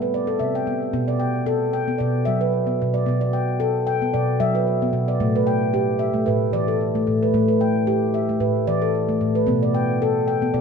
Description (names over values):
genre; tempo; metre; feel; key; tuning
world meditative, meditative tuned percussion; 112 BPM; 4/4; swing 54% on 16ths; unclear; A4 = 440 Hz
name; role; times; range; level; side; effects
handpan; solo; 0.0-10.6 s; A2 to G5; -19 LUFS; equal; ping-pong delay
room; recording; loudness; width
wet echo chamber reverb, RT60 1.7 s; none; -19 LUFS; side -6 dB against mid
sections
0.9-10.6 A section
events
none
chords
0.0 C; 0.9 Bm; 5.2 A5; 9.5 Bm